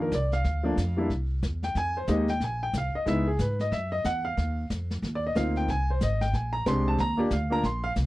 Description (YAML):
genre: jazz piano trio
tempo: 183 BPM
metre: 4/4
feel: swing 61% on 8ths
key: unclear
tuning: A4 = 441 Hz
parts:
  - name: warm upright piano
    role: melody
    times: 0.0-7.9 s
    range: F3 to C6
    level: -27 LUFS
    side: equal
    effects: none
  - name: upright bass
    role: bass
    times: 0.0-8.1 s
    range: Ab1 to Ab2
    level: -28 LUFS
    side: equal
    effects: none
  - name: vintage brush drum kit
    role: drums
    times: 0.1-8.1 s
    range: brushed snare drum, hi-hat, kick drum, snare drum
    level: -34 LUFS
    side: equal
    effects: none
room: little or no reverb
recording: dry, close 1970s-style studio recording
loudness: -25 LUFS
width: side -18 dB against mid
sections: 0.0-8.1 A section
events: upright piano solo 0.0-8.1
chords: 0.4 Gm7 (rootless); 1.1 C; 1.8 Fm11; 3.1 Dbm7; 3.7 Esus2; 4.4 Ebmaj7sus2; 5.7 Ab; 6.3 Bb13; 7.0 Ebmaj7sus2